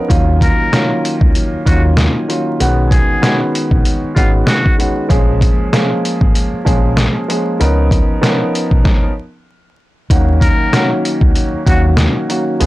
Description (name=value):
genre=hip hop, boom-bap hip-hop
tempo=96 BPM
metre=4/4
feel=swing 58% on 16ths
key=Eb minor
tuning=A4 = 440 Hz
part: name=warm baby grand piano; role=accompaniment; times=0.0-12.7 s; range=Eb3 to Bb4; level=-16 LUFS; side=equal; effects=high-pass filter, low-pass filter
part: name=fingered electric bass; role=bass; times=0.1-12.7 s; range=G#1 to Eb2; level=-15 LUFS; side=equal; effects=tube saturation
part: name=trip hop sampler-style drum kit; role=drums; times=0.1-12.7 s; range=hi-hat, kick drum, snare drum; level=-13 LUFS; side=equal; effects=none
part: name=trumpet with metal mute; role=melody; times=0.4-4.8, 10.4-11.8 s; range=F4 to Bb4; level=-21 LUFS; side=left 1 dB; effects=high-pass filter, low-pass filter, analog delay
room=light reverb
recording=blown-out, overdriven recording, vinyl crackle, overdrive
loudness=-11 LUFS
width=side -18 dB against mid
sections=0.0-10.1 A section; 10.1-12.7 B section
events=stop 8.8-10.1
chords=0.1 Ebm9; 2.6 B69; 5.1 Bbm7; 7.6 Db13; 10.1 Ebm7